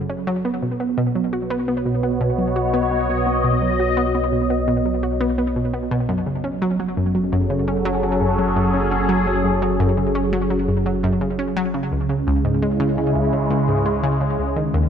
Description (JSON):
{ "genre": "ambient, sequencer-driven space music", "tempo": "85 BPM", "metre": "4/4", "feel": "straight", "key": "F# dorian", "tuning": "A4 = 440 Hz", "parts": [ { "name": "sweeping resonant pad", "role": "sustained chords", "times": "0.0-14.9 s", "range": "C#3 to D#5", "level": "-21 LUFS", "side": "right 1 dB", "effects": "chorus" }, { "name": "analog pluck", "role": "riff", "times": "0.0-14.8 s", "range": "C#2 to F#4", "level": "-22 LUFS", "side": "equal", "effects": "chorus, cassette tape, analog delay" }, { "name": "analog drone", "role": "bass", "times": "1.3-14.9 s", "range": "F#1 to D#2", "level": "-28 LUFS", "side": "equal", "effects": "chorus" } ], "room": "moderate plate reverb, RT60 3.0 s", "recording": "none", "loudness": "-18 LUFS", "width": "side -8 dB against mid", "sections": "0.0-14.9 A section", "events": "none", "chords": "0.4 B; 6.1 F#m; 11.7 C#m" }